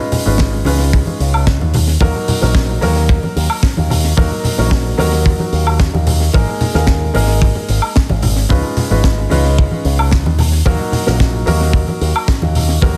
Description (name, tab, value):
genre	nu-disco, nu disco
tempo	111 BPM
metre	4/4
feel	straight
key	Eb minor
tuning	A4 = 440 Hz
part	clear grand piano	accompaniment	0.0-13.0 s	Gb3 to Cb5	-23 LUFS	equal	tape echo
part	tight funk drum kit	drums	0.1-12.7 s	hi-hat, snare drum, woodblock	-24 LUFS	equal	tape echo
part	congas	percussion	0.1-12.9 s	none	-24 LUFS	equal	none
part	picked electric bass with an envelope filter	bass	0.3-12.9 s	Ab1 to Eb2	-17 LUFS	equal	none
part	kick drum	drums	0.4-12.9 s	none	-17 LUFS	equal	none
room	light reverb, small room ambience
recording	echo-heavy mix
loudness	-14 LUFS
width	mono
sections	0.0-13.0 A section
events	none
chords	0.0 Db7; 1.7 Ebm; 6.3 Absus2; 8.5 Db7; 10.4 Ebm